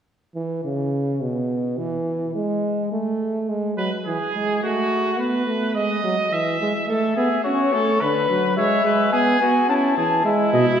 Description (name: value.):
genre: classical, imitative canzona for brass ensemble.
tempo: 106 BPM.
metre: 3/4.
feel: straight.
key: A major.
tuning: A4 = 441 Hz.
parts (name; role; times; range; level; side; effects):
warm trombone; accompaniment; 0.4-10.6 s; B2 to C#4; -22 LUFS; right 1 dB; none.
clear trumpet; second line; 3.8-10.8 s; E4 to E5; -24 LUFS; right 2 dB; none.
mellow cornet; melody; 7.2-10.7 s; B4 to A5; -20 LUFS; left 4 dB; none.
warm tuba; bass; 10.5-10.7 s; B2; -17 LUFS; right 2 dB; none.
room: wet scoring stage reverb, RT60 2.0 s.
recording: heard from further back in the room.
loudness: -19 LUFS.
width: side -8 dB against mid.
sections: 0.1-10.8 A section.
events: none.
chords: 0.1 N.C.; 4.6 F#m/A; 5.2 B; 6.3 E; 6.9 A; 8.0 Bm/D; 8.6 E/G#; 9.7 A/C#; 10.2 E.